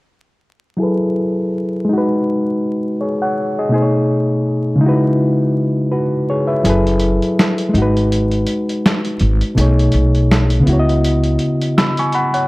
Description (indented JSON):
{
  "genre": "lo-fi hip hop",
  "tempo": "82 BPM",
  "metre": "4/4",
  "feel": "swing 57% on 16ths",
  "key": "F# dorian",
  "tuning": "A4 = 443 Hz",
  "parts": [
    { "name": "overdriven reed electric piano", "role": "accompaniment", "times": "0.8-12.5 s", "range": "B2 to E6", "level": "-15 LUFS", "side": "equal", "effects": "cassette tape, low-pass filter" },
    { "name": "upright bass", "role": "bass", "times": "6.6-11.4 s", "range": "F#1 to C#2", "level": "-16 LUFS", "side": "equal", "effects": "none" },
    { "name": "dusty soul sampler-style drum kit", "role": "drums", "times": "6.6-12.5 s", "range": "hi-hat, snare drum", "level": "-19 LUFS", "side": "equal", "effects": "none" }
  ],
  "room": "moderate plate reverb, RT60 1.9 s",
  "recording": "dark, warm production, vinyl crackle",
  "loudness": "-13 LUFS",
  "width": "side -21 dB against mid",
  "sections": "0.8-6.6 A section; 6.6-12.5 B section",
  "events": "filter sweep on reed electric piano 0.8-6.6; kick muted 6.6-12.5",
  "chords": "0.8 F#m11; 1.9 G#m7; 3.7 B13; 4.8 C#m11; 6.6 F#m11; 7.7 G#m7; 9.6 B13; 10.7 C#m11"
}